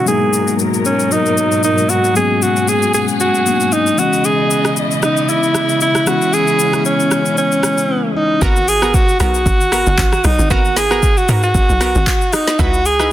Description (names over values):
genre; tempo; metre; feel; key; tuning
amapiano; 115 BPM; 4/4; swing 55% on 16ths; G# minor; A4 = 438 Hz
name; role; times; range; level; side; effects
breathy alto saxophone; melody; 0.0-13.1 s; C#4 to G#4; -15 LUFS; right 1 dB; low-pass filter, digital delay
mellow tine electric piano; accompaniment; 0.0-8.4 s; E3 to D#5; -19 LUFS; left 4 dB; lush chorus, low-pass filter
warm studio string section; sustained chords; 0.0-8.4 s; G#2 to D#5; -21 LUFS; equal; sidechain pumping, low-pass filter
afro-pop drum kit; drums; 0.1-13.1 s; handclaps, hi-hat, kick drum, rim click, shaker, snare drum; -18 LUFS; equal; none
analog pluck; stabs; 8.4-13.1 s; B3 to B4; -24 LUFS; right 2 dB; chorus, digital delay
tight log drum bass; bass; 8.4-13.1 s; F#1 to G#2; -17 LUFS; equal; none
room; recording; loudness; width
light reverb; dense, heavily limited modern master; -12 LUFS; side -13 dB against mid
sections
0.0-8.4 A section; 8.4-13.1 B section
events
filter sweep 0.0-8.4; drop 8.4-13.1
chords
0.1 G#m9; 4.0 C#m9; 8.4 G#m9; 12.3 C#m9